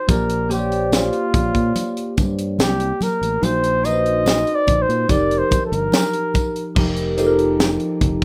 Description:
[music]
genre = lush 1970s-style soul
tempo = 72 BPM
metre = 4/4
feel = straight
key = Bb major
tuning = A4 = 438 Hz
[part]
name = breathy flugelhorn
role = melody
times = 0.0-6.7 s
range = F4 to Eb5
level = -23 LUFS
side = equal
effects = plate reverb
[part]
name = bell-like tine electric piano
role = accompaniment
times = 0.0-8.2 s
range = F3 to D5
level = -24 LUFS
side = equal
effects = phaser
[part]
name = fingered electric bass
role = bass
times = 0.1-8.2 s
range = F1 to Bb2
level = -26 LUFS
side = equal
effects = none
[part]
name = tight funk drum kit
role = drums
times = 0.1-8.2 s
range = crash cymbal, hi-hat, kick drum, snare drum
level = -23 LUFS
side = equal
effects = none
[part]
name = congas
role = percussion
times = 0.1-8.2 s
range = none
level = -28 LUFS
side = equal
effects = none
[part]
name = tambourine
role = percussion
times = 0.1-7.8 s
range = none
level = -37 LUFS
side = equal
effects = none
[sound]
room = light reverb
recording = rough home demo mix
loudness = -19 LUFS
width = mono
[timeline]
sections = 0.0-6.8 A section; 6.8-8.2 B section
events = flugelhorn solo 0.0-6.8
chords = 0.1 Bb69; 3.4 Ebm6/Bb; 5.1 F9sus4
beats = | 0.09 0.92 1.76 2.59 | 3.43 4.26 5.10 5.93 | 6.77 7.60

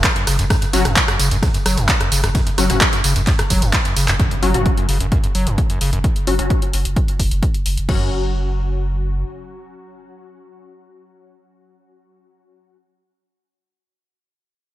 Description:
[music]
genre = driving peak-time techno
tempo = 130 BPM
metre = 4/4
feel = straight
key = unclear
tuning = A4 = 442 Hz
[part]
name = overdriven acid bass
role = riff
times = 0.0-8.1 s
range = F#2 to F#3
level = -23 LUFS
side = equal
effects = sidechain pumping, ping-pong delay
[part]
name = warm sub bass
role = bass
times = 0.0-9.2 s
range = F#1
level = -22 LUFS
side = equal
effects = overdrive, sidechain pumping, low-pass filter
[part]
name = electronic kick drum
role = drums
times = 0.0-8.0 s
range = none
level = -19 LUFS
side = equal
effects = none
[part]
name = punchy analog drum machine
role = drums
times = 0.0-8.0 s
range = crash cymbal, handclaps, hi-hat, ride cymbal, rim click, tambourine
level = -20 LUFS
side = equal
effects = sidechain pumping on hats, sidechain pumping on cymbals, sidechain pumping on perc, gated reverb
[part]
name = rave stab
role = stabs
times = 0.7-12.8 s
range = F#3 to F#4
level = -24 LUFS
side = left 4 dB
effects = chorus, built-in reverb, sidechain pumping, ping-pong delay
[part]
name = impact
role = sound effects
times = 4.2-6.0 s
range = none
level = -30 LUFS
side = equal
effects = none
[sound]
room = light reverb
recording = bright 1980s-style digital production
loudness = -15 LUFS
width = side -14 dB against mid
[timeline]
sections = 0.0-4.2 A section; 4.2-7.9 B section; 7.9-11.6 C section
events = drop 0.0-4.2; drum fill 3.7-4.2; impact 4.2-6.0; filter sweep on synth stab 4.2-7.9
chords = 0.0 F#5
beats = 0.04 | 0.50 0.96 1.43 1.89 | 2.35 2.81 3.27 3.73 | 4.20 4.66 5.12 5.58 | 6.04 6.50 6.96 7.43 | 7.89 8.35 8.81 9.27 | 9.73 10.20 10.66 11.12

